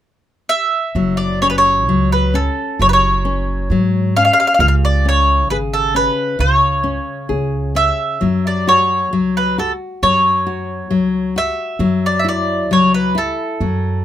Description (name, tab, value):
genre	fado-style ballad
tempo	66 BPM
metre	2/4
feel	rubato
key	F# minor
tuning	A4 = 440 Hz
part	mandolin	melody	0.5-14.0 s	A4 to E#5	-16 LUFS	equal	none
part	upright bass	bass	0.9-14.0 s	F#1 to G#2	-20 LUFS	right 1 dB	none
part	nylon-string guitar	accompaniment	1.0-14.0 s	C#3 to G#4	-19 LUFS	left 4 dB	none
room	light reverb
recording	minimal, uncompressed stereo recording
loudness	-13 LUFS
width	side -11 dB against mid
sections	0.9-14.0 A section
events	none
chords	0.0 N.C.; 0.9 F#5; 4.6 C#5; 8.2 F#5; 11.8 F#m7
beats	0.04 | 0.95 1.88 | 2.80 3.70 | 4.59 5.49 | 6.38 7.29 | 8.21 9.12 | 10.02 10.91 | 11.80 12.70 | 13.61